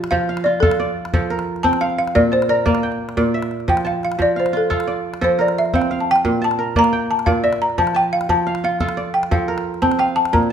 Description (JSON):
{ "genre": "west african traditional, West African string and xylophone music", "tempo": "117 BPM (dotted quarters)", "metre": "12/8", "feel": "straight", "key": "F major", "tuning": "A4 = 440 Hz", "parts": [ { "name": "kora", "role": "arpeggios", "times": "0.0-10.5 s", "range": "Bb2 to A5", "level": "-20 LUFS", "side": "right 2 dB", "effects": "none" }, { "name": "calabash", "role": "percussion", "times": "0.0-10.5 s", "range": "none", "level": "-24 LUFS", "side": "left 2 dB", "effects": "none" }, { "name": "balafon", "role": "melody", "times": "0.1-10.5 s", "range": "A4 to Bb5", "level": "-18 LUFS", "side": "left 1 dB", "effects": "none" } ], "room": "moderate recital hall reverb, RT60 1.5 s", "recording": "minimal, uncompressed stereo recording", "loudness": "-16 LUFS", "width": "side -8 dB against mid", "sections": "0.0-10.5 A section", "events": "balafon solo 0.0-10.5", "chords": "0.1 F; 2.2 Bb; 4.2 F; 6.2 Bb; 8.3 F" }